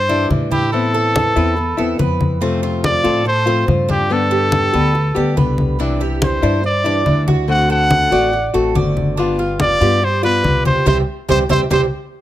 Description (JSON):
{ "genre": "latin, Cuban son and guajira", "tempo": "142 BPM", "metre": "4/4", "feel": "straight", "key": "C major", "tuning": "A4 = 441 Hz", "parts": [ { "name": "clear trumpet", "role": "melody", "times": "0.0-11.8 s", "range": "G4 to F#5", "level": "-18 LUFS", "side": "equal", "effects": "none" }, { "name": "Cuban tres", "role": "arpeggios", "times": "0.0-11.8 s", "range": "C4 to E5", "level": "-22 LUFS", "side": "right 5 dB", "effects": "none" }, { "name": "upright bass", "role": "bass", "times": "0.0-11.9 s", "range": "G1 to A2", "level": "-20 LUFS", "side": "equal", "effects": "none" }, { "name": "nylon-string guitar", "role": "accompaniment", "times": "0.1-11.8 s", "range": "C3 to G4", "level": "-20 LUFS", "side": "left 3 dB", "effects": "none" }, { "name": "congas", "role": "percussion", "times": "0.1-11.8 s", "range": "none", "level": "-20 LUFS", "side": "left 1 dB", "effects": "none" } ], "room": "light reverb", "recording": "close, detailed microphones", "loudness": "-13 LUFS", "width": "side -13 dB against mid", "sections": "0.0-12.2 A section", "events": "band accent 10.9-12.2", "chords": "0.0 Cadd9; 0.7 Amadd9; 2.4 F; 4.1 Gadd9; 5.8 Cadd9; 7.5 D7; 9.2 G7; 10.9 C", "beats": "0.30 | 0.73 1.15 1.57 1.99 | 2.41 2.84 3.26 3.68 | 4.10 4.53 4.95 5.37 | 5.79 6.22 6.64 7.06 | 7.48 7.91 8.33 8.75 | 9.17 9.60 10.02 10.44 | 10.86 11.28 11.71" }